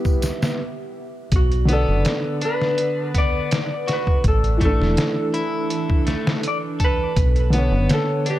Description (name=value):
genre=trip hop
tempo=82 BPM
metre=4/4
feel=straight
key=B minor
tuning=A4 = 440 Hz
part: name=felt-muted upright piano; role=accompaniment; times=0.0-8.4 s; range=D3 to D5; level=-25 LUFS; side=equal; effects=tremolo, tape echo
part: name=warbly tape-like pad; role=sustained chords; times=0.0-8.4 s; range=D3 to E5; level=-30 LUFS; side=right 1 dB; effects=chorus, built-in reverb, phaser, vintage 12-bit sampler grit
part: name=tambourine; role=percussion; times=0.0-0.6 s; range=none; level=-39 LUFS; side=left 1 dB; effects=none
part: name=trip hop sampler-style drum kit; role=drums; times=0.1-8.4 s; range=hi-hat, kick drum, snare drum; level=-21 LUFS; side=equal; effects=studio reverb
part: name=deep dub fingered electric bass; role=bass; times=1.3-7.9 s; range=E1 to B1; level=-19 LUFS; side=equal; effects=none
part: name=clean lap steel guitar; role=melody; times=1.4-8.4 s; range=F#4 to D5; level=-25 LUFS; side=right 2 dB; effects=tape echo
part: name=electric guitar at the edge of break-up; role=arpeggios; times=1.7-8.4 s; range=A3 to A4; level=-30 LUFS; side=left 4 dB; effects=tape echo
room=digital ambience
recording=none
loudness=-18 LUFS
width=side -14 dB against mid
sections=0.0-1.3 A section; 1.3-8.4 B section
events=filter sweep on felt piano 0.0-1.3; break 0.6-1.3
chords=0.0 Em; 1.3 Bm; 4.2 Asus4; 7.2 Bmadd9